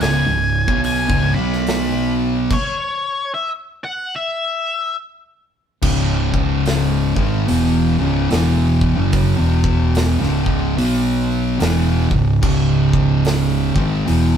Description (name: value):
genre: stoner and doom metal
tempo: 72 BPM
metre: 4/4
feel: swing 62% on 8ths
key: C# minor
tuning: A4 = 440 Hz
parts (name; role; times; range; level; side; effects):
- octave-fuzz lead guitar; melody; 0.0-5.0 s; C#5 to B5; -21 LUFS; left 2 dB; wah, distortion
- thick fuzz guitar; riff; 0.0-14.4 s; C#2 to B3; -21 LUFS; left 8 dB; distortion
- thick fuzz guitar; riff; 0.0-14.4 s; C#2 to B3; -19 LUFS; right 6 dB; distortion
- fingered electric bass; bass; 0.0-14.4 s; C#1 to B1; -20 LUFS; equal; overdrive
- big rock drum kit; drums; 0.0-14.3 s; crash cymbal, hi-hat, kick drum, snare drum; -23 LUFS; equal; none
room: wet stone room reverb, RT60 0.9 s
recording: band playing live in one room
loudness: -15 LUFS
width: side -8 dB against mid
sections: 0.0-5.8 A section; 5.8-14.4 B section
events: stop 2.5-5.8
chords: 0.0 C#5; 1.3 B5; 2.5 N.C.; 5.8 C#m; 9.3 E5; 10.2 C#5; 10.8 B5; 11.6 C#m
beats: 0.01 0.84 1.67 | 2.50 3.33 4.16 4.99 | 5.82 6.65 7.48 8.30 | 9.13 9.96 10.78 11.60 | 12.43 13.25 14.07